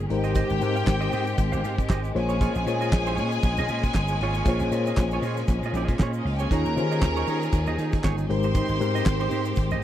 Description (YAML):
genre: disco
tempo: 117 BPM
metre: 4/4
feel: swing 56% on 16ths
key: Bb dorian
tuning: A4 = 440 Hz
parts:
  - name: clean electric guitar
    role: accompaniment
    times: 0.0-9.8 s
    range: Eb4 to F5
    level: -33 LUFS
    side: right 8 dB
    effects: none
  - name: mellow reed electric piano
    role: accompaniment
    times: 0.0-9.8 s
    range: Eb3 to Db5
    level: -29 LUFS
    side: left 4 dB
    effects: fast tremolo
  - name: clear studio string section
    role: sustained chords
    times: 0.0-9.8 s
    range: Eb3 to Ab4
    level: -32 LUFS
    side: equal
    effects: none
  - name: vintage slap bass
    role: bass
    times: 0.0-9.8 s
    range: G1 to Eb3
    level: -27 LUFS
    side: equal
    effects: none
  - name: bright studio violin section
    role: second line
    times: 0.1-9.8 s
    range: Eb4 to C6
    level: -32 LUFS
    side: equal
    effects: none
  - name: damped 70s drum kit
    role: drums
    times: 0.1-9.7 s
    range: handclaps, hi-hat, kick drum, snare drum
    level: -23 LUFS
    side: equal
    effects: none
  - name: tube shaker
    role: percussion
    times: 0.2-9.8 s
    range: none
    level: -51 LUFS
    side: right 23 dB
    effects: none
room: little or no reverb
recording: dry, close 1970s-style studio recording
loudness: -22 LUFS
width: side -12 dB against mid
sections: 0.0-9.8 A section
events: none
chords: 0.1 Abmaj7; 2.1 Bbm7; 8.3 Abmaj7